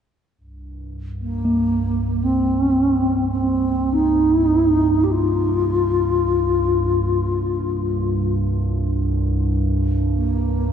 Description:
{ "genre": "world meditative, free-time meditation music", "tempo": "free time", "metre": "none", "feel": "none", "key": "C minor pentatonic", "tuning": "A4 = 440 Hz", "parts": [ { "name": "warbly tape-like pad", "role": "drone", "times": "0.4-10.7 s", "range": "C2 to G2", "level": "-22 LUFS", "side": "equal", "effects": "chorus, built-in reverb" }, { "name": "mellow bass flute", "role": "melody", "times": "1.2-10.7 s", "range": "Bb3 to G4", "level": "-19 LUFS", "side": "left 1 dB", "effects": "ping-pong delay" }, { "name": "bronze singing bowl", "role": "texture", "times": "1.4-10.5 s", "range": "Bb3", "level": "-29 LUFS", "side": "right 2 dB", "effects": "none" } ], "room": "wet cathedral reverb, RT60 4.8 s", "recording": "dark, warm production, nothing above 10.4 kHz", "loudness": "-17 LUFS", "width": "side -8 dB against mid", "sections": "0.4-10.7 A section", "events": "none", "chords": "none" }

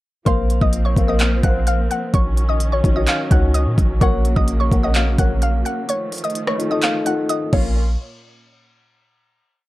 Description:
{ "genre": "hip hop, trap", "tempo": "128 BPM", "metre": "4/4", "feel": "half-time", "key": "Bb harmonic minor", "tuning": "A4 = 439 Hz", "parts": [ { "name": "mallet-like synth pluck", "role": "melody", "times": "0.3-7.7 s", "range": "C5 to Gb6", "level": "-24 LUFS", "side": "left 1 dB", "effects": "chorus, phaser, digital delay" }, { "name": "dark concert grand piano", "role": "accompaniment", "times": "0.3-7.8 s", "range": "Bb3 to Gb5", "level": "-24 LUFS", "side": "left 4 dB", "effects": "none" }, { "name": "muted studio string section", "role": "sustained chords", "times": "0.3-7.7 s", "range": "Bb2 to F4", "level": "-28 LUFS", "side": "right 2 dB", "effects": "none" }, { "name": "warm 808-style bass", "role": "bass", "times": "0.3-8.0 s", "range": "Bb1 to Bb2", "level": "-18 LUFS", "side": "equal", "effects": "none" }, { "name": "trap drum kit", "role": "drums", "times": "0.3-7.6 s", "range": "crash cymbal, handclaps, hi-hat, kick drum, rim click", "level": "-19 LUFS", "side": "equal", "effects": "overdrive" } ], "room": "little or no reverb", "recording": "dark, warm production", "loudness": "-16 LUFS", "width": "side -17 dB against mid", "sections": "0.3-7.8 hook; 7.8-9.6 final hit", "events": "break 5.9-7.8", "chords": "0.3 Bbsus2; 2.1 Ebm7/Bb; 5.9 F7; 7.5 Bbm; 7.8 N.C." }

